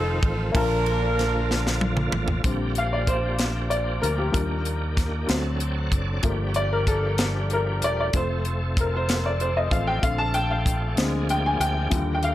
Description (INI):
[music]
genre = slow gospel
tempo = 63 BPM (dotted quarters)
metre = 6/8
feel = straight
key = Bb major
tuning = A4 = 437 Hz
[part]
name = dark saxophone section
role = melody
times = 0.0-1.8 s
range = C4 to Bb4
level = -26 LUFS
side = right 2 dB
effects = none
[part]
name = clear upright piano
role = accompaniment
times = 0.0-12.3 s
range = Bb2 to A5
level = -26 LUFS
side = left 2 dB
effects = none
[part]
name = bright tonewheel organ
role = sustained chords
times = 0.0-12.3 s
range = D3 to G5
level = -31 LUFS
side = right 2 dB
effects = fast rotary speaker, overdrive, chorus vibrato
[part]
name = fingered electric bass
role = bass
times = 0.0-12.3 s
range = E1 to Eb2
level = -26 LUFS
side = equal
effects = none
[part]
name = tight funk drum kit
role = drums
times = 0.2-12.3 s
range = hi-hat, kick drum, ride cymbal, snare drum, toms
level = -26 LUFS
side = equal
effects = none
[sound]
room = light reverb, studio ambience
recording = none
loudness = -21 LUFS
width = side -14 dB against mid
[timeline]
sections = 0.0-2.4 A section; 2.4-12.3 B section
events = drum fill 1.5-2.4; upright piano solo 2.4-12.3; tonewheel organ fill 5.3-6.2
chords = 0.0 F7; 0.5 Bbmaj7; 2.4 Bb6; 4.3 Ebmaj7; 5.3 D7; 6.2 Gm7; 8.1 F; 10.0 Bbmaj7; 11.0 Bb7/D